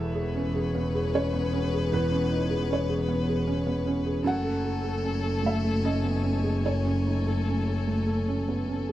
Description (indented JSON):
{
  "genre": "neoclassical piano and strings",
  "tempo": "76 BPM",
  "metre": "3/4",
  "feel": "rubato",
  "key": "C# minor",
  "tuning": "A4 = 441 Hz",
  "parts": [
    { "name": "clear violin", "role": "melody", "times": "0.0-8.8 s", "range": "A4 to B4", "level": "-35 LUFS", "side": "left 7 dB", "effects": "tape echo" },
    { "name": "felt-muted upright piano", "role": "accompaniment", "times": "0.0-8.9 s", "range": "E2 to F#5", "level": "-28 LUFS", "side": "right 2 dB", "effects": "plate reverb" },
    { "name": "rich symphonic string section", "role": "sustained chords", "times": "0.0-8.9 s", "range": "A3 to G#5", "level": "-38 LUFS", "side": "left 3 dB", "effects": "none" },
    { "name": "clear double bass", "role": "bass", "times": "0.0-8.9 s", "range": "E1 to F#1", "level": "-28 LUFS", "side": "left 1 dB", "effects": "none" }
  ],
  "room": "moderate studio ambience, RT60 0.5 s",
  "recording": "dark, warm production",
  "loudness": "-24 LUFS",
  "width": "side -14 dB against mid",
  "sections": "0.0-8.9 A section",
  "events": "none",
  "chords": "0.0 C#m7/E; 4.3 F#madd9",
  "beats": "0.35 1.14 | 1.92 2.71 3.48 | 4.26 5.05 5.85 | 6.65 7.47 8.28"
}